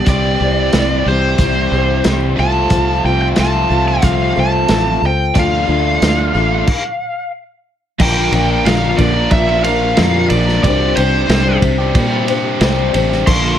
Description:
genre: folk rock and heartland rock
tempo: 91 BPM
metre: 4/4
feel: straight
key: unclear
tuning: A4 = 442 Hz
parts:
  - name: biting lead guitar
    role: melody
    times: 0.0-13.6 s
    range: C5 to C6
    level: -18 LUFS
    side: equal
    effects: overdrive, slapback echo
  - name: picked steel-string acoustic guitar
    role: accompaniment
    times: 0.0-13.6 s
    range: Bb2 to C5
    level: -20 LUFS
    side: left 6 dB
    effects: none
  - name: biting overdriven guitar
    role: riff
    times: 0.0-13.6 s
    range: Bb2 to Bb4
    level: -19 LUFS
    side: right 1 dB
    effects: none
  - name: fingered electric bass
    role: bass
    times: 0.0-13.6 s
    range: A1 to Bb2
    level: -17 LUFS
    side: right 1 dB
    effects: none
  - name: vintage drum kit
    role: drums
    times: 0.1-13.4 s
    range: crash cymbal, hi-hat, kick drum, ride cymbal, snare drum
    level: -17 LUFS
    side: right 1 dB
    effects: none
room: light reverb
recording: none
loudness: -12 LUFS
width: side -10 dB against mid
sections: 0.0-8.0 A section; 8.0-13.6 B section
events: stop 6.7-8.0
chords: 0.1 C; 2.4 F/C; 5.4 Dm; 8.0 Bb; 10.6 Csus2

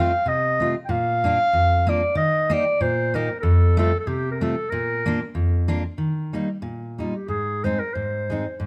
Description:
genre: alpine folk, alpine dance band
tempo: 94 BPM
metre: 2/4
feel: swing 55% on 8ths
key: Bb major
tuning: A4 = 439 Hz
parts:
  - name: warm clarinet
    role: melody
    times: 0.0-8.6 s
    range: F4 to G5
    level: -25 LUFS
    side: equal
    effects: none
  - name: fingerpicked steel-string acoustic guitar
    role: accompaniment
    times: 0.0-8.7 s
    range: F2 to G4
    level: -25 LUFS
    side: equal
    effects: none
room: light reverb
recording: close, detailed microphones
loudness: -22 LUFS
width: mono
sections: 0.0-6.0 A section; 6.0-8.7 B section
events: none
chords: 0.0 F; 0.9 Bb; 2.2 Eb; 3.4 F; 4.7 Bb; 6.0 Eb; 7.3 Ab

